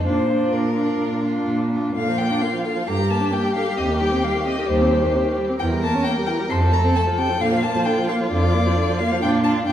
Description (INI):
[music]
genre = quick classical-period movement for string quartet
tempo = 132 BPM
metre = 4/4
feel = rubato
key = Bb major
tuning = A4 = 440 Hz
[part]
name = rich violin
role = melody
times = 0.0-9.7 s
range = Bb4 to C6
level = -25 LUFS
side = left 4 dB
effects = none
[part]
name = rich violin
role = second line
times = 0.0-9.7 s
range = F4 to Bb4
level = -26 LUFS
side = left 1 dB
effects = none
[part]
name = rich viola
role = accompaniment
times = 0.0-9.7 s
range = C3 to D4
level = -23 LUFS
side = right 1 dB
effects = none
[part]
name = rich cello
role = bass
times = 0.1-9.7 s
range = Eb2 to Bb2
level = -23 LUFS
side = right 1 dB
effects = none
[sound]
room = wet stone room reverb, RT60 1.4 s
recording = heard from further back in the room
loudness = -18 LUFS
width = side -10 dB against mid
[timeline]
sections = 0.0-2.0 A section; 2.0-9.7 A section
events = none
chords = 0.1 Bb; 2.9 Gm; 3.8 Cm/Eb; 5.6 Edim7; 6.5 F; 7.4 Bb; 9.2 Bb6